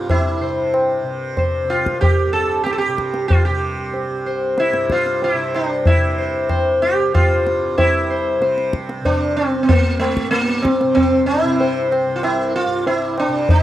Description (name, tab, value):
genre	indian classical, Hindustani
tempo	94 BPM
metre	3/4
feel	straight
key	C raga khamaj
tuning	A4 = 440 Hz
part	sitar	melody	0.0-13.6 s	A3 to C5	-17 LUFS	equal	none
part	tanpura	drone	0.0-13.6 s	C2 to C3	-28 LUFS	right 2 dB	none
part	tabla	percussion	0.1-13.6 s	none	-19 LUFS	equal	none
room	small room reverb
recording	dry, close 1970s-style studio recording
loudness	-15 LUFS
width	side -13 dB against mid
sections	0.0-7.8 A section; 7.8-13.6 B section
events	none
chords	none